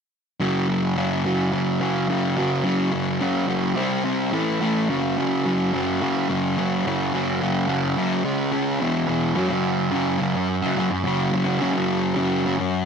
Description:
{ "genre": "rock", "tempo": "107 BPM", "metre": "4/4", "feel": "straight", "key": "unclear", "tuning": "A4 = 440 Hz", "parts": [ { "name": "fuzz guitar", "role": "riff", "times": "0.4-12.9 s", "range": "E2 to C#4", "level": "-20 LUFS", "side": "equal", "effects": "distortion" } ], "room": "moderate studio reverb, RT60 0.6 s", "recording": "none", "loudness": "-20 LUFS", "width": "side -6 dB against mid", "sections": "0.4-9.4 A section; 9.4-12.9 B section", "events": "none", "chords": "0.4 F#5; 3.8 C5; 4.3 A5; 4.9 F#5; 8.2 C#5; 8.8 E5; 9.4 F#5" }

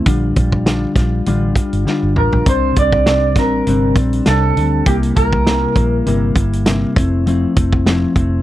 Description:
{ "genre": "indie pop, bedroom pop", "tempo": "100 BPM", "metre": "4/4", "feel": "swing 55% on 16ths", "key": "C mixolydian", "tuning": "A4 = 444 Hz", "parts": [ { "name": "mellow electric guitar", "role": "accompaniment", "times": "0.0-8.4 s", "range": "Bb2 to F4", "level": "-18 LUFS", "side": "left 2 dB", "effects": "lush chorus, vibrato effect" }, { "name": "vintage muted fingered electric bass", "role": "bass", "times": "0.1-8.4 s", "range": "F1 to D2", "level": "-18 LUFS", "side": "equal", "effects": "none" }, { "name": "loose indie drum kit", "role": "drums", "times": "0.1-8.3 s", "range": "hi-hat, kick drum, snare drum, toms", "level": "-16 LUFS", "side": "equal", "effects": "none" }, { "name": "electric guitar through a small old amp", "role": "melody", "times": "2.2-6.3 s", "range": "G4 to D5", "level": "-18 LUFS", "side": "right 2 dB", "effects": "wide subtle chorus, tape echo" } ], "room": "light reverb", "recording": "dry, close 1970s-style studio recording", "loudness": "-12 LUFS", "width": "side -14 dB against mid", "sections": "0.0-8.4 A section", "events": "drum fill 1.9-2.5", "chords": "0.1 Bb6; 2.5 Csus2; 4.9 C7; 7.0 Fmaj7" }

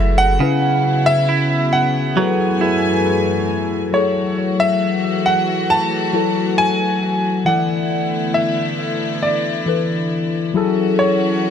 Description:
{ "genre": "R&B", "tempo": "68 BPM", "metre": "4/4", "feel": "straight", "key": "F# minor", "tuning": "A4 = 444 Hz", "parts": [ { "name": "clear grand piano", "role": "melody", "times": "0.0-11.5 s", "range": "C#5 to A5", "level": "-19 LUFS", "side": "right 1 dB", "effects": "tape echo" }, { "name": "mellow tine electric piano", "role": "accompaniment", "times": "0.0-11.5 s", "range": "C#3 to D5", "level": "-19 LUFS", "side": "left 4 dB", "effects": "phaser" }, { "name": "warm symphonic string section", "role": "sustained chords", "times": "0.0-11.5 s", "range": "F#2 to G#5", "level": "-23 LUFS", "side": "equal", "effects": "none" }, { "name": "direct-recorded clean electric guitar", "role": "arpeggios", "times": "0.0-4.5 s", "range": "C#3 to E4", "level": "-23 LUFS", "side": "right 6 dB", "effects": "analog chorus, tape echo" } ], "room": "light reverb", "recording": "none", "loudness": "-15 LUFS", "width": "side -8 dB against mid", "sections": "0.0-3.9 A section; 3.9-11.5 A section", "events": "none", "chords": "0.4 C#m7; 2.2 F#m11; 3.9 F#m9; 7.5 E7sus4; 10.6 F#m9" }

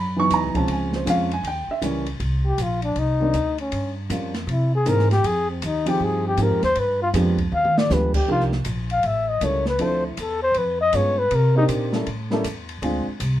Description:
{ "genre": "jazz, small-group swing and bop", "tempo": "158 BPM", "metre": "4/4", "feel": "swing 64% on 8ths", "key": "C minor", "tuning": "A4 = 440 Hz", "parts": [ { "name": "dark upright piano", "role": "accompaniment", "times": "0.0-13.1 s", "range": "Eb3 to C#6", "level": "-23 LUFS", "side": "right 2 dB", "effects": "none" }, { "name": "upright bass", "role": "bass", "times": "0.0-13.4 s", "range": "A1 to C3", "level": "-24 LUFS", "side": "equal", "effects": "none" }, { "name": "open jazz drum kit", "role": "drums", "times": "0.3-13.3 s", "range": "crash cymbal, hi-hat, kick drum, ride cymbal, snare drum, toms", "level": "-31 LUFS", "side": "equal", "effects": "none" }, { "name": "breathy flugelhorn", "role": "melody", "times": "2.5-11.6 s", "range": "C4 to F5", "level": "-21 LUFS", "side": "left 2 dB", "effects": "none" } ], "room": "light reverb", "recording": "minimal, uncompressed stereo recording", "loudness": "-19 LUFS", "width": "side -13 dB against mid", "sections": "0.0-2.2 A section; 2.2-13.4 A section", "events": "flugelhorn solo 2.2-13.4; drum fill 7.5-7.9", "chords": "0.0 C#m11; 0.7 C#maj7; 1.4 D#7b9; 2.2 Cm9; 3.7 Gm7b5; 4.5 C7alt; 5.2 Fm7; 6.8 G7b9; 8.3 Cm11; 9.0 A7b9; 9.8 Dm9; 10.6 Db7#11; 11.3 Cm9; 12.1 A7b9; 12.8 Dm7b5" }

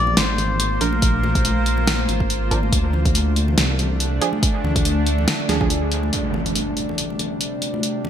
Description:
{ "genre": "deep dubstep", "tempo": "141 BPM", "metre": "4/4", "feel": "swing 55% on 16ths, half-time", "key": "unclear", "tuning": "A4 = 438 Hz", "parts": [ { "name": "melodica", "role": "melody", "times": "0.0-2.0 s", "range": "Bb4 to D5", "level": "-26 LUFS", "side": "left 1 dB", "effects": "dub echo" }, { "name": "bowed-like drone", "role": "sustained chords", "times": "0.0-8.1 s", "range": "C3 to C5", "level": "-26 LUFS", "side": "equal", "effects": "built-in reverb" }, { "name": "dark detuned saw bass", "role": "bass", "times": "0.0-6.1 s", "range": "Ab1 to D2", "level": "-21 LUFS", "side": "equal", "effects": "none" }, { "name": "congas", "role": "percussion", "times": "0.1-8.1 s", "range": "none", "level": "-27 LUFS", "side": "left 2 dB", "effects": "none" }, { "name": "deep house drum kit", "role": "drums", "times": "0.2-7.9 s", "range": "hi-hat, snare drum", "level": "-22 LUFS", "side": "equal", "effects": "gated reverb" }, { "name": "filtered dub chord stab", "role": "stabs", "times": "0.8-6.1 s", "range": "F3 to Bb4", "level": "-28 LUFS", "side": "right 5 dB", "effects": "chorus, dub echo" }, { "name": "electronic kick drum", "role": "drums", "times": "1.0-5.7 s", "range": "none", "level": "-21 LUFS", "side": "equal", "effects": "none" }, { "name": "impact", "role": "sound effects", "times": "6.1-7.8 s", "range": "none", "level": "-29 LUFS", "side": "right 1 dB", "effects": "none" } ], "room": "light reverb, digital ambience", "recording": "bright 1980s-style digital production", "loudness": "-18 LUFS", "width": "side -9 dB against mid", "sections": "0.0-6.1 A section; 6.1-8.1 B section", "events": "break 5.7-6.1; impact 6.1-7.8", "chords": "0.0 Bb; 2.7 Ddim; 6.1 C5" }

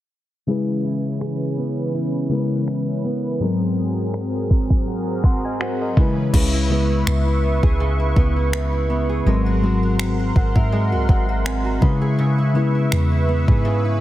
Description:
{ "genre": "contemporary R&B", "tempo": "82 BPM", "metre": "4/4", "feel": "swing 54% on 16ths", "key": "C# dorian", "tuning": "A4 = 437 Hz", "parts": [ { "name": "mellow FM electric piano", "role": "accompaniment", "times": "0.5-14.0 s", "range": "G#2 to B#5", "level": "-22 LUFS", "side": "left 2 dB", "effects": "chorus" }, { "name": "warm analog pad", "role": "sustained chords", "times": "0.5-14.0 s", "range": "E3 to C#6", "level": "-28 LUFS", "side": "equal", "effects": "chorus" }, { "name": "fingerpicked steel-string acoustic guitar", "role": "arpeggios", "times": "0.5-14.0 s", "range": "C#3 to A#4", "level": "-26 LUFS", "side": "right 3 dB", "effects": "none" }, { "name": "smooth R&B drum kit", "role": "drums", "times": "1.2-13.6 s", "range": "crash cymbal, finger snaps, kick drum", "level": "-18 LUFS", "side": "equal", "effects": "soft clipping on snare" }, { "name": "soft 808-style bass", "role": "bass", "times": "6.3-14.0 s", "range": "G#1 to C#3", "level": "-21 LUFS", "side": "equal", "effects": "none" } ], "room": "little or no reverb", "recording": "dense, heavily limited modern master, low-pass filter", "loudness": "-17 LUFS", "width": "side -14 dB against mid", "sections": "0.5-6.3 A section; 6.3-14.0 B section", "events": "filter sweep 0.5-6.3; FM electric piano fill 10.0-12.2", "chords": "0.5 C#m7; 3.4 G#9; 6.0 C#m7; 9.3 G#9; 11.8 C#m7" }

